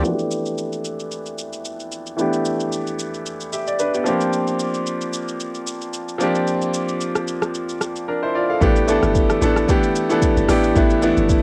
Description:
amapiano; 112 BPM; 4/4; swing 55% on 16ths; A4 = 440 Hz
bright grand piano; accompaniment; 0.0-11.4 s; E3 to F5; -22 LUFS; equal; low-pass filter, cassette tape
deep log drum bass; bass; 0.0, 8.6-11.4 s; G1 to A1; -24 LUFS; equal
afro-pop drum kit; drums; 0.0-11.4 s; hi-hat, kick drum, rim click, shaker; -26 LUFS; equal; cassette tape
moderate booth ambience, RT60 0.2 s; home recording on cassette; -20 LUFS; mono
0.0-8.6 A section; 8.6-11.4 B section
filter sweep on grand piano 0.0-8.6; drop 8.6-11.4
0.0 A9sus4; 4.1 C9sus4; 8.6 A9sus4

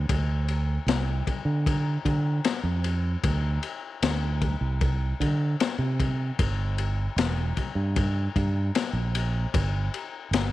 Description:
psychedelic rock; 76 BPM; 4/4; straight; A4 = 440 Hz
fingered electric bass; bass; 0.0-10.5 s; E1 to D3; -25 LUFS; right 1 dB
crunchy breakbeat drum kit; drums; 0.1-10.5 s; kick drum, ride cymbal, snare drum; -28 LUFS; left 3 dB
little or no reverb; 1960s-style stereo; -24 LUFS; side -16 dB against mid
0.0-10.5 A section

